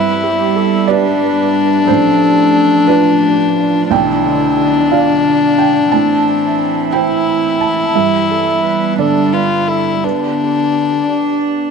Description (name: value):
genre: neoclassical piano and strings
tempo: 59 BPM (dotted quarters)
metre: 6/8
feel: rubato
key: unclear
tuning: A4 = 438 Hz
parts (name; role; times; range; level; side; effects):
- warm violin; melody; 0.0-11.7 s; D4 to F4; -13 LUFS; left 6 dB; none
- warm cello; second line; 0.0-11.7 s; D3 to D4; -22 LUFS; right 10 dB; none
- felt-muted upright piano; accompaniment; 0.0-11.7 s; A1 to A5; -17 LUFS; right 13 dB; none
- warm viola; accompaniment; 0.0-11.6 s; C4 to B4; -23 LUFS; right 12 dB; none
- soft additive organ-like pad; sustained chords; 0.0-11.7 s; A3 to E5; -24 LUFS; equal; ensemble chorus, built-in reverb
room: light reverb, small room ambience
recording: 1960s-style stereo with parts hard left and right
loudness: -11 LUFS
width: side -5 dB against mid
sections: 0.0-11.7 A section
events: none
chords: 0.0 G6; 1.9 Dm/A; 3.9 Bdim; 5.9 Am; 7.9 G6